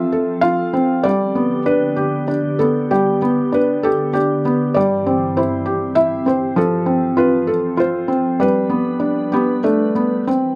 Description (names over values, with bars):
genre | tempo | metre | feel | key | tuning
children's music, lullaby | 98 BPM | 3/4 | rubato | unclear | A4 = 440 Hz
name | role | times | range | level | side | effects
felt-muted upright piano | melody | 0.0-10.6 s | F3 to F5 | -18 LUFS | equal | none
glassy FM pad | sustained chords | 0.0-10.6 s | G2 to B4 | -26 LUFS | equal | ensemble chorus, built-in reverb
room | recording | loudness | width
light reverb | none | -17 LUFS | mono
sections
0.0-10.3 A section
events
none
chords
0.0 F; 1.0 G; 4.8 C/G; 6.6 F; 8.4 G